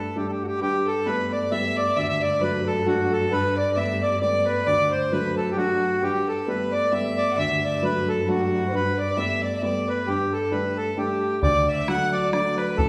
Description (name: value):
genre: celtic folk, Celtic waltz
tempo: 133 BPM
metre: 3/4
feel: swing 55% on 8ths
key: G major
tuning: A4 = 440 Hz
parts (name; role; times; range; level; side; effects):
- accordion; melody; 0.0-12.9 s; F#4 to F#5; -26 LUFS; equal; none
- warm upright piano; accompaniment; 0.0-12.9 s; A1 to D4; -30 LUFS; equal; none
- warm cello; drone; 0.0-11.5 s; G2; -36 LUFS; equal; none
- dark fiddle; second line; 0.6-12.9 s; E4 to F#5; -32 LUFS; equal; none
- bodhran; percussion; 11.4-12.9 s; none; -29 LUFS; equal; none
room: wet recital hall reverb, RT60 1.3 s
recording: recorded in a church or concert hall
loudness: -24 LUFS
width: mono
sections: 0.6-11.4 A section; 11.4-12.9 B section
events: none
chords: 0.0 Gsus2; 0.6 Gadd9; 2.0 D; 3.3 Gadd9; 4.7 D; 6.0 Gadd9; 7.4 D; 8.7 Gadd9; 10.1 Gsus2; 11.4 D